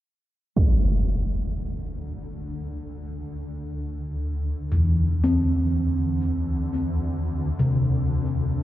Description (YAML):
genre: dark ambient drone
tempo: free time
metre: none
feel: none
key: unclear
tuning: A4 = 440 Hz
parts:
  - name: swarming drone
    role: drone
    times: 1.4-8.6 s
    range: D2 to D3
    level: -30 LUFS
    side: equal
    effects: built-in reverb
  - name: impact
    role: percussion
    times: 0.6-0.8 s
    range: none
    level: -24 LUFS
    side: equal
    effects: low-pass filter on sfx
  - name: gamelan-type bossed gongs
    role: arpeggios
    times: 4.7-8.6 s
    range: E2 to C4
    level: -21 LUFS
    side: left 1 dB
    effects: diffuse ambient delay
room: wet cathedral reverb, RT60 4.9 s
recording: cassette tape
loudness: -22 LUFS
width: side -14 dB against mid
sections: 0.6-8.6 A section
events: fade-in on synth drone 0.6-8.6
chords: 0.6 Cadd9/D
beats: free time